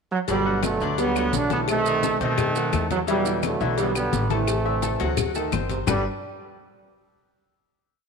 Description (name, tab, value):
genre	latin, salsa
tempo	172 BPM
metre	4/4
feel	straight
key	G major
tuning	A4 = 436 Hz
part	brilliant trombone section	melody	0.1-6.0 s	B2 to D4	-24 LUFS	right 3 dB	none
part	warm trombone section	second line	0.3-6.0 s	B2 to G3	-32 LUFS	right 10 dB	none
part	bright upright piano	accompaniment	0.3-6.0 s	D3 to E6	-29 LUFS	left 10 dB	none
part	upright bass	bass	0.3-6.0 s	G1 to B2	-29 LUFS	right 1 dB	none
part	congas	percussion	0.3-6.0 s	none	-31 LUFS	left 9 dB	none
part	cowbell and bongos	percussion	0.3-6.0 s	none	-32 LUFS	left 13 dB	none
part	maracas	percussion	0.3-6.0 s	none	-36 LUFS	right 15 dB	none
part	claves	percussion	0.6-6.0 s	none	-36 LUFS	left 13 dB	none
room	moderate echo chamber reverb, RT60 1.8 s, studio reverb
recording	1960s-style stereo with parts hard left and right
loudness	-21 LUFS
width	side -5 dB against mid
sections	0.0-0.3 pickup bar; 0.3-5.9 mambo (horn riffs); 5.9-7.3 final chord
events	none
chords	0.3 Gmaj9; 1.7 B7b9; 3.1 Em9; 4.5 Am; 5.2 D7b9; 5.9 Gmaj9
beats	| 0.28 0.63 0.98 1.33 | 1.68 2.03 2.38 2.73 | 3.08 3.43 3.78 4.13 | 4.48 4.83 5.18 5.53 | 5.88